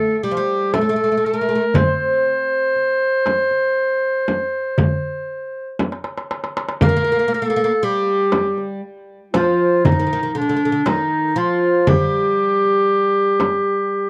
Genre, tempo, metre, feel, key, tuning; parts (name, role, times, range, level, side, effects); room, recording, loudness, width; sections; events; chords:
Turkish makam ensemble; 118 BPM (eighths); 10/8; straight; C makam huseyni; A4 = 443 Hz
warm clarinet; melody; 0.0-14.1 s; D4-33c to C5; -20 LUFS; equal
oud; second line; 0.0-14.1 s; D3-30c to C4; -25 LUFS; equal; tape echo
darbuka; percussion; 0.7-13.6 s; -24 LUFS; equal
frame drum; percussion; 0.7-13.6 s; -23 LUFS; equal
little or no reverb; dry, close 1970s-style studio recording; -18 LUFS; mono
0.0-6.8 A section; 6.8-14.1 B section
drum fill 5.8-6.8